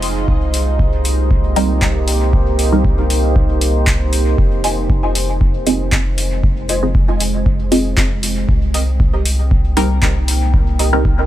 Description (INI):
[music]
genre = dub techno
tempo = 117 BPM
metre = 4/4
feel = straight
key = unclear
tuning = A4 = 441 Hz
[part]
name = deep dark ambient pad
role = sustained chords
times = 0.0-11.3 s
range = Ab3 to G5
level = -22 LUFS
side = right 1 dB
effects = chorus, built-in reverb, vintage 12-bit sampler grit, sidechain pumping
[part]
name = soft dub sub bass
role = bass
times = 0.0-11.3 s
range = F1 to C2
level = -18 LUFS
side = equal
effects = tube saturation, sidechain pumping
[part]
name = booming analog drum machine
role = drums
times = 0.0-10.9 s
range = handclaps, hi-hat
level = -22 LUFS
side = equal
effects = none
[part]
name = electronic kick drum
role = drums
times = 0.3-11.2 s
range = none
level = -16 LUFS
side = equal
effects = none
[part]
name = filtered dub chord stab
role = stabs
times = 1.6-11.2 s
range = G3 to Eb5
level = -20 LUFS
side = right 1 dB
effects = phaser, sidechain pumping, dub echo
[part]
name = filtered dub chord stab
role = riff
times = 4.6-11.3 s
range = C4 to Ab5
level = -25 LUFS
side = right 1 dB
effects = phaser, ensemble chorus, sidechain pumping, dub echo
[sound]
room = digital ambience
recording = none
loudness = -13 LUFS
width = side -13 dB against mid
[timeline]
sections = 0.0-11.3 A section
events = none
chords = 0.3 Cm7; 4.4 Fm7; 8.5 Cm7